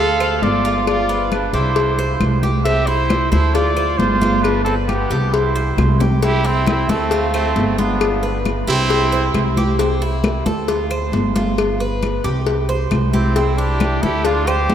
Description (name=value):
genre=latin, Cuban son and guajira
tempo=134 BPM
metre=4/4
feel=straight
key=C major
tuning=A4 = 438 Hz
part: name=warm trumpet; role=melody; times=0.0-9.5, 13.1-14.7 s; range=A3 to F5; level=-22 LUFS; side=right 1 dB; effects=none
part: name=bright trumpet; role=second line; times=0.0-9.5, 13.1-14.7 s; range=B3 to C5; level=-26 LUFS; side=right 4 dB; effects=none
part: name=Cuban tres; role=arpeggios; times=0.0-14.7 s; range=C4 to C5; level=-24 LUFS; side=right 2 dB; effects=none
part: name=upright bass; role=bass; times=0.0-14.7 s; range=G1 to D2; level=-20 LUFS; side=equal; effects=none
part: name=claves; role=percussion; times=0.2-14.7 s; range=none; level=-37 LUFS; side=left 6 dB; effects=none
part: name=congas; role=percussion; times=0.2-14.7 s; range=none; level=-24 LUFS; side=left 1 dB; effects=none
part: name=cowbell and bongos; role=percussion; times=0.4-14.7 s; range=none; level=-23 LUFS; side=left 4 dB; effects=none
room=wet cathedral reverb, RT60 5.9 s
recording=in a vast, echoing space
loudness=-15 LUFS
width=side -9 dB against mid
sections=0.0-6.2 A section; 6.2-14.7 A section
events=drum fill 5.8-6.2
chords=0.0 Dm7; 0.9 G7; 1.8 C6; 3.5 Dm7; 4.4 G7; 5.3 C; 6.2 C6; 7.1 Dm7; 8.0 G7; 8.9 C6; 10.7 Dm7; 11.6 G7; 12.5 C6